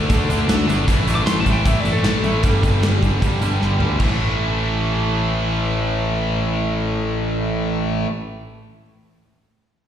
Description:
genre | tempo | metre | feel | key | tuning
hard rock | 153 BPM | 4/4 | straight | unclear | A4 = 440 Hz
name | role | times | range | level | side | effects
lightly driven lead guitar | melody | 0.0-3.1 s | A4 to D6 | -26 LUFS | left 1 dB | slapback echo
overdriven electric guitar | riff | 0.0-8.1 s | G2 to D4 | -24 LUFS | right 8 dB | slapback echo
tight distorted guitar | riff | 0.0-8.1 s | G2 to D4 | -25 LUFS | left 10 dB | distortion, slapback echo
fuzz picked electric bass | bass | 0.0-8.0 s | G1 to A2 | -21 LUFS | equal | overdrive
gated 80s drum kit | drums | 0.1-4.1 s | crash cymbal, hi-hat, kick drum, snare drum, toms | -20 LUFS | equal | none
room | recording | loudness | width
light reverb | live gig heard through the venue's PA, recital hall reverb | -17 LUFS | side -9 dB against mid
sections
0.0-4.0 A section; 4.0-7.1 B section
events
lead electric guitar solo 0.0-4.0; drum fill 3.6-4.0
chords
0.0 D5; 0.9 A5; 2.4 G5; 4.0 A5

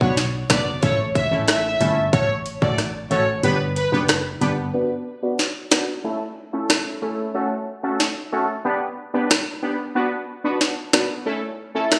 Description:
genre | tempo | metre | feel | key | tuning
dancehall | 92 BPM | 4/4 | straight | B minor | A4 = 439 Hz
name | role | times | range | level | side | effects
warm symphonic violin section | melody | 0.0-3.9 s | B4 to E5 | -26 LUFS | equal | tape echo
synth brass stab | accompaniment | 0.0-12.0 s | A3 to B4 | -26 LUFS | equal | chorus, phaser, low-pass filter
solid FM bass | bass | 0.0-4.7 s | F#1 to B1 | -27 LUFS | equal | none
island pop drum kit | drums | 0.0-12.0 s | hi-hat, kick drum, rim click, snare drum | -22 LUFS | equal | none
room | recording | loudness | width
moderate lush hall reverb, RT60 2.3 s | recorded on a phone in the room, studio reverb, compression | -22 LUFS | mono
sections
0.0-4.7 A section; 4.7-12.0 B section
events
kick muted 3.4-4.7; filter sweep on synth stab 4.7-12.0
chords
0.0 Bm; 0.8 A; 2.1 F#m/A; 3.4 G; 4.7 Bm; 6.0 A; 7.3 F#m/A; 8.7 G; 10.0 Bm; 11.3 A

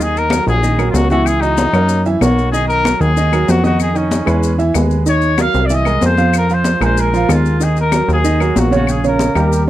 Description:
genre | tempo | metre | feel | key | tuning
Afro-Cuban jazz | 189 BPM | 4/4 | straight | Eb minor | A4 = 440 Hz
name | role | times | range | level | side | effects
warm trumpet | melody | 0.0-9.6 s | Db4 to F5 | -18 LUFS | left 2 dB | none
warm baby grand piano | accompaniment | 0.0-9.7 s | Db3 to F5 | -18 LUFS | right 4 dB | none
plucky analog bass | bass | 0.0-9.7 s | Bb1 to Gb2 | -16 LUFS | equal | none
maracas | percussion | 0.0-9.7 s | none | -32 LUFS | left 19 dB | none
congas | percussion | 0.2-9.7 s | none | -20 LUFS | left 2 dB | none
claves | percussion | 0.3-9.5 s | none | -26 LUFS | left 17 dB | none
room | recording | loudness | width
small room ambience | dry, close 1970s-style studio recording | -12 LUFS | side -14 dB against mid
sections
0.0-9.7 A section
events
none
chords
0.0 Ebm7; 1.3 Dbmadd9; 1.9 Gb7; 2.5 Bmaj7#11; 3.8 Fm7b5; 4.4 E; 5.1 Ebm7; 5.7 C7alt; 6.3 Fmadd11; 7.0 Bb5; 7.6 Ebm7; 8.9 Bbm6

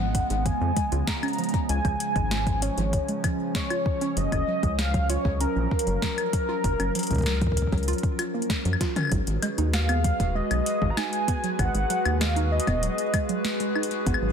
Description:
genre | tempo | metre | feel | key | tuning
IDM | 97 BPM | 4/4 | straight | G# dorian | A4 = 441 Hz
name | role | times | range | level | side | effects
warm velvety synth lead | melody | 0.0-13.7 s | A#4 to A#5 | -29 LUFS | equal | chorus, digital delay
warbly tape-like pad | sustained chords | 0.0-14.3 s | C#3 to B4 | -31 LUFS | right 1 dB | chorus, built-in reverb
warbly dusty pluck | arpeggios | 0.0-14.3 s | E#3 to E#4 | -33 LUFS | right 4 dB | chorus, cassette tape, tape echo
rubbery square bass | bass | 0.0-14.3 s | D#1 to F#2 | -26 LUFS | equal | none
electro analog drum machine | drums | 0.1-14.3 s | claves, hi-hat, snare drum, toms | -31 LUFS | left 2 dB | overdrive, ping-pong delay
electronic kick drum | drums | 0.1-14.2 s | none | -27 LUFS | equal | none
room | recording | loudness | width
light reverb, digital ambience | dense, heavily limited modern master | -23 LUFS | side -7 dB against mid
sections
0.0-9.1 A section; 9.1-14.3 B section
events
drum fill 8.8-9.1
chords
0.0 C#7; 4.2 F#maj7; 9.1 G#m7

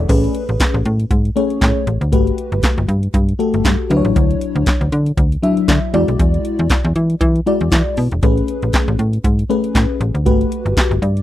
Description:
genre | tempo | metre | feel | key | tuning
early-eighties boogie funk | 118 BPM | 4/4 | swing 56% on 16ths | A major | A4 = 440 Hz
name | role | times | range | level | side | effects
FM electric piano with soft pad layer | accompaniment | 0.0-11.2 s | F#3 to E5 | -18 LUFS | left 3 dB | chorus, tremolo
slap-like FM bass | bass | 0.0-11.2 s | E1 to E3 | -16 LUFS | equal | none
electro analog drum machine | drums | 0.1-11.2 s | crash cymbal, handclaps, hi-hat, kick drum, snare drum | -17 LUFS | equal | none
room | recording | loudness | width
little or no reverb | dry, close 1970s-style studio recording, lossy compression artefacts | -14 LUFS | side -13 dB against mid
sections
0.1-11.2 A section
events
FM electric piano fill 10.8-11.2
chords
0.1 Amaj9; 2.1 Gmaj9; 3.9 Dmaj9; 5.9 E9; 8.2 Amaj9; 10.3 Gmaj9

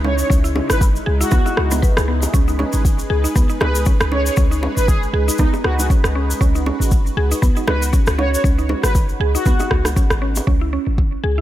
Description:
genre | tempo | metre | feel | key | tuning
afro house | 118 BPM | 4/4 | swing 56% on 16ths | unclear | A4 = 440 Hz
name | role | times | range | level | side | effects
warm analog pad | sustained chords | 0.0-10.4 s | C#3 to B4 | -28 LUFS | right 1 dB | chorus, sidechain pumping
mallet-like synth pluck | arpeggios | 0.0-11.4 s | B3 to B4 | -24 LUFS | right 1 dB | chorus, sidechain pumping, digital delay
warm 808-style bass | bass | 0.0-11.4 s | G#1 to C#2 | -20 LUFS | equal | tube saturation, sidechain pumping
bongos | percussion | 0.0-10.5 s | none | -27 LUFS | right 1 dB | none
expressive synth lead | melody | 0.1-9.9 s | D#4 to C#5 | -24 LUFS | equal | ensemble chorus, digital delay
cabasa | percussion | 0.2-10.4 s | none | -28 LUFS | left 2 dB | none
electronic kick drum | drums | 0.3-11.1 s | none | -16 LUFS | equal | overdrive
electronic rim click | drums | 0.7-10.2 s | none | -23 LUFS | equal | overdrive
room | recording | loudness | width
digital ambience | none | -15 LUFS | side -13 dB against mid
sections
0.0-10.5 A section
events
drop 0.0-10.5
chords
0.0 C#m11; 2.3 G#m; 10.5 C#5

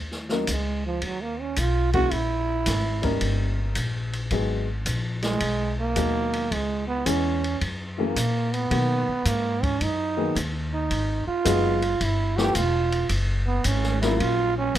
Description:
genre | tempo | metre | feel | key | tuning
jazz, small-group swing and bop | 109 BPM | 4/4 | swing 68% on 8ths | Eb minor | A4 = 440 Hz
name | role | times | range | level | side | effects
upright bass | bass | 0.0-14.8 s | E1 to B2 | -27 LUFS | equal | none
open jazz drum kit | drums | 0.1-14.8 s | hi-hat, kick drum, ride cymbal, snare drum | -30 LUFS | equal | none
dark baby grand piano | accompaniment | 0.3-14.7 s | Cb3 to Bb4 | -27 LUFS | left 4 dB | none
growling trombone | second line | 0.5-14.8 s | F3 to G4 | -26 LUFS | right 4 dB | none
room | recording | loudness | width
little or no reverb | close, detailed microphones | -22 LUFS | side -12 dB against mid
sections
0.0-14.8 A section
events
trombone solo 0.0-14.8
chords
0.0 Ebm7; 2.1 Bbm7b5; 3.2 Eb7; 4.3 Abm7; 6.5 Dbm7; 7.6 Gb7; 8.7 Bmaj7; 10.9 Abm7; 12.0 G13; 13.1 Gbmaj7

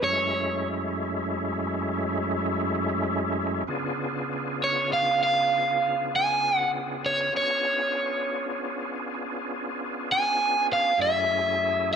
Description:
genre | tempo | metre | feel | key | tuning
blues | 66 BPM (dotted quarters) | 12/8 | straight | F# minor | A4 = 439 Hz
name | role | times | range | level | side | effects
crunchy overdriven guitar | melody | 0.0-12.0 s | C#5 to G#5 | -23 LUFS | right 1 dB | spring reverb, plate reverb
overdriven tonewheel organ | sustained chords | 0.0-12.0 s | F#2 to G#4 | -28 LUFS | equal | slow rotary speaker, chorus vibrato
room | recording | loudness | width
moderate club reverb, RT60 0.9 s | dark, warm production | -24 LUFS | side -7 dB against mid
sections
0.0-12.0 A section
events
none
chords
0.0 F#m7; 3.7 C#7b9; 11.0 F#m7

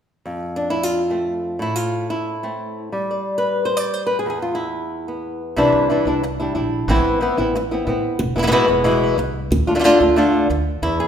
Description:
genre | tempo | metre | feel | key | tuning
flamenco | 182 BPM | 4/4 | straight | unclear | A4 = 440 Hz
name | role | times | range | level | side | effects
flamenco guitar | melody | 0.3-11.1 s | E2 to D5 | -18 LUFS | equal | none
upright bass | bass | 5.6-11.1 s | E1 to A2 | -24 LUFS | right 1 dB | none
room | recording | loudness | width
wet recital hall reverb, RT60 1.4 s | recorded in a church or concert hall | -17 LUFS | side -8 dB against mid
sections
0.3-5.6 A section; 5.6-10.8 B section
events
none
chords
0.3 F; 1.6 Am; 2.9 G5; 4.3 E5; 5.6 Cadd9; 6.9 Amadd9; 8.2 E; 9.5 Dm

